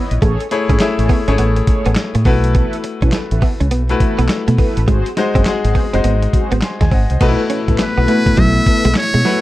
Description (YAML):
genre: R&B, new jack swing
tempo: 103 BPM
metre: 4/4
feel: swing 63% on 16ths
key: unclear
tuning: A4 = 441 Hz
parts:
  - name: clear concert grand piano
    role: accompaniment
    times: 0.0-9.4 s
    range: G#3 to B#5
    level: -20 LUFS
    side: left 4 dB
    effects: none
  - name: direct-recorded clean electric guitar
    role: riff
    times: 0.0-9.4 s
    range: F#3 to C#4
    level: -21 LUFS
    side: right 4 dB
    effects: ensemble chorus
  - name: mellow synth brass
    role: stabs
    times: 0.0-9.4 s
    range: E4 to D#5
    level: -26 LUFS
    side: equal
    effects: chorus
  - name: deep dub fingered electric bass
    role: bass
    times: 0.1-9.2 s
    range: F#1 to B2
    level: -16 LUFS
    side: equal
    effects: none
  - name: dusty soul sampler-style drum kit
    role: drums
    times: 0.1-9.4 s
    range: crash cymbal, handclaps, hi-hat, kick drum, snare drum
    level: -16 LUFS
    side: equal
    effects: vintage 12-bit sampler grit
  - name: chorused pulse-width pad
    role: sustained chords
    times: 7.2-9.4 s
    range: A3 to E4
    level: -21 LUFS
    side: left 2 dB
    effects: none
  - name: trumpet with metal mute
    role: melody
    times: 7.8-9.4 s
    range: B4 to E5-23c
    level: -17 LUFS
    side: equal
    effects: none
room: little or no reverb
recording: dark, warm production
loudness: -12 LUFS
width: side -16 dB against mid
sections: 0.0-7.2 A section; 7.2-9.4 B section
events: none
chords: 0.2 Amaj7; 2.3 B7sus4; 4.9 G#7; 7.2 B7sus4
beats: | 0.22 0.80 1.38 1.97 | 2.55 3.13 3.71 4.30 | 4.88 5.46 6.04 6.63 | 7.21 7.79 8.37 8.96